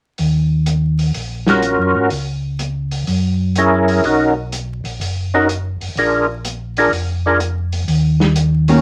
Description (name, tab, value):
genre	soul jazz organ trio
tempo	125 BPM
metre	4/4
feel	swing 67% on 8ths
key	Eb minor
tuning	A4 = 440 Hz
part	mellow tonewheel organ	bass	0.2-8.8 s	F1 to Ab2	-20 LUFS	equal	slow rotary speaker
part	vintage drum kit	drums	0.2-8.8 s	hi-hat, snare drum	-26 LUFS	equal	none
part	percussive tonewheel organ	melody	1.5-8.8 s	Db4 to Bb4	-17 LUFS	equal	slow rotary speaker, overdrive, chorus vibrato
part	archtop guitar, miked and amplified	accompaniment	8.7-8.8 s	Eb3 to Gb4	-14 LUFS	equal	none
room	moderate studio reverb, RT60 0.6 s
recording	vinyl crackle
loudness	-17 LUFS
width	mono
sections	0.2-7.9 A section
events	none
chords	0.2 Ebm7; 2.1 N.C.; 3.1 Gb7; 4.0 Bmaj7; 6.0 Bb7; 7.9 Ebm7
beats	| 0.19 0.67 1.16 1.64 | 2.12 2.60 3.08 3.56 | 4.04 4.53 5.01 5.49 | 5.97 6.45 6.93 7.41 | 7.89 8.37